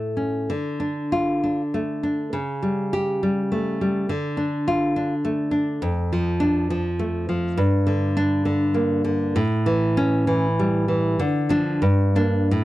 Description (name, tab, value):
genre	romantic piece for solo classical guitar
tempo	101 BPM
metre	3/4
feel	uneven beats, rubato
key	D minor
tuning	A4 = 440 Hz
part	nylon-string guitar	solo	0.0-12.6 s	F2 to A4	-20 LUFS	equal	none
room	little or no reverb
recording	dry, close 1970s-style studio recording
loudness	-20 LUFS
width	side -16 dB against mid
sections	0.5-12.6 A section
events	none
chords	0.0 A; 0.5 Dm; 2.3 A7/C#; 4.1 Dm; 5.8 Dm/F; 7.6 Gm; 9.4 A7; 11.2 Dm; 11.8 Gm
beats	| 0.51 1.12 1.73 | 2.33 2.93 3.52 | 4.09 4.67 5.25 | 5.83 6.41 6.99 | 7.59 8.18 8.76 | 9.37 9.97 10.59 | 11.20 11.84 12.52